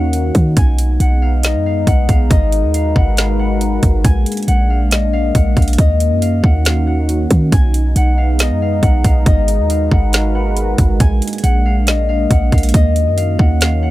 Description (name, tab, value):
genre	hip hop, atmospheric cloud-rap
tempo	138 BPM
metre	4/4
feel	half-time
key	Eb minor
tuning	A4 = 439 Hz
part	Celtic harp	melody	0.0-13.9 s	Eb5 to G#5	-22 LUFS	left 5 dB	tape echo
part	dark analog pad	sustained chords	0.0-13.9 s	Eb3 to Cb5	-20 LUFS	equal	chorus, sidechain pumping
part	clean 808-style bass	bass	0.0-13.9 s	Ab1 to Eb3	-14 LUFS	equal	none
part	trap drum kit	drums	0.1-13.7 s	hi-hat, kick drum, snare drum	-14 LUFS	equal	none
room	little or no reverb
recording	none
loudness	-12 LUFS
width	side -16 dB against mid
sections	0.0-13.9 A section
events	none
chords	0.0 Ebm7; 0.6 B6; 2.3 Abm7; 4.0 Bb7; 5.8 Ebm7; 7.5 B6; 9.3 Abm7; 11.0 Bb7; 12.7 Ebm7